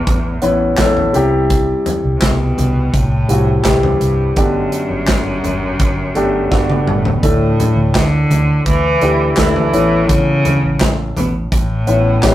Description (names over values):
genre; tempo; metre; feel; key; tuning
piano-driven pop; 84 BPM; 4/4; straight; D major; A4 = 444 Hz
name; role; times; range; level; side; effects
bright cello; melody; 0.0-12.3 s; E2 to E3; -18 LUFS; equal; none
warm baby grand piano; accompaniment; 0.0-12.3 s; A2 to B4; -17 LUFS; left 1 dB; none
vintage muted fingered electric bass; bass; 0.1-12.3 s; G1 to D2; -19 LUFS; equal; none
modern studio drum kit; drums; 0.1-12.3 s; handclaps, hi-hat, kick drum, snare drum, toms; -17 LUFS; equal; none
room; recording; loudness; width
wet studio reverb, RT60 0.7 s; rough rehearsal-room recording, tube saturation; -12 LUFS; side -14 dB against mid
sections
0.0-12.3 A section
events
drum fill 6.5-7.2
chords
0.0 Aadd9; 1.1 C; 4.4 Gadd9; 7.2 Dsus2; 9.7 Aadd9